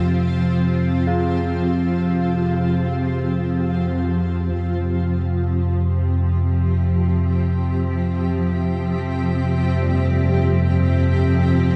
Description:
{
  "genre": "dark ambient drone",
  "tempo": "free time",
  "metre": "none",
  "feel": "none",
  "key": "unclear",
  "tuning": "A4 = 442 Hz",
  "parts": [
    { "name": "granular cloud pad", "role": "sustained chords", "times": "0.0-11.8 s", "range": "F3 to G4", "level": "-26 LUFS", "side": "equal", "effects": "built-in reverb" },
    { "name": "analog drone", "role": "drone", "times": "0.0-11.8 s", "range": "F2 to C3", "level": "-21 LUFS", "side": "equal", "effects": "chorus" },
    { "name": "carillon bells", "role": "arpeggios", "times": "1.1-11.8 s", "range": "G3 to F4", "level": "-34 LUFS", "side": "equal", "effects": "none" },
    { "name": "wind-like tuned noise texture", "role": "texture", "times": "6.4-11.8 s", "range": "E5", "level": "-40 LUFS", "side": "equal", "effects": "built-in reverb" }
  ],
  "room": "moderate huge ambient reverb, RT60 7.7 s",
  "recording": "none",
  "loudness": "-20 LUFS",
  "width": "mono",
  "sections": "0.0-4.5 A section; 4.5-11.8 B section",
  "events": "fade-in on synth texture 4.5-11.8",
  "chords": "0.0 F5"
}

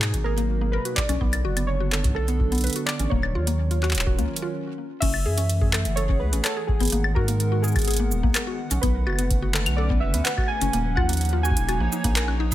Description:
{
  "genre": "IDM",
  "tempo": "126 BPM",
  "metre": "4/4",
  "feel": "straight",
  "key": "unclear",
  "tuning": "A4 = 441 Hz",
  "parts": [
    { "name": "warbly lo-fi synth keys", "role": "melody", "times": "0.0-12.4 s", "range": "G#4 to G#5", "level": "-31 LUFS", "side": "right 2 dB", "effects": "chorus, vintage 12-bit sampler grit, tape echo" },
    { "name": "hollow soft pad", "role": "sustained chords", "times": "0.0-12.5 s", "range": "B2 to F#5", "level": "-31 LUFS", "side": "right 1 dB", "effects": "chorus, vintage 12-bit sampler grit, sidechain pumping" },
    { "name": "mallet-like synth pluck", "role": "arpeggios", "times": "0.0-12.5 s", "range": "A#3 to C#5", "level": "-30 LUFS", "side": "left 3 dB", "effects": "chorus, digital delay" },
    { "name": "round analog bass", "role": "bass", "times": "0.0-12.5 s", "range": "D#1 to G#2", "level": "-24 LUFS", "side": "equal", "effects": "none" },
    { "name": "electro analog drum machine", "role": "drums", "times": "0.0-12.5 s", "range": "cabasa, claves, crash cymbal, handclaps, hi-hat", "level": "-27 LUFS", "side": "equal", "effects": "studio reverb" },
    { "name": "electronic kick drum", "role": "drums", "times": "0.1-12.5 s", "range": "none", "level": "-25 LUFS", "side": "equal", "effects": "studio reverb" }
  ],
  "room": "little or no reverb",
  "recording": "none",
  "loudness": "-21 LUFS",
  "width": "side -14 dB against mid",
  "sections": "0.0-5.0 A section; 5.0-12.5 B section",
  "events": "stop 4.5-5.0",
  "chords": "0.0 G#m9; 1.0 Bm9; 3.1 D#m9; 5.0 F#m9; 6.7 G#m9; 8.6 Bm9; 10.7 D#m9"
}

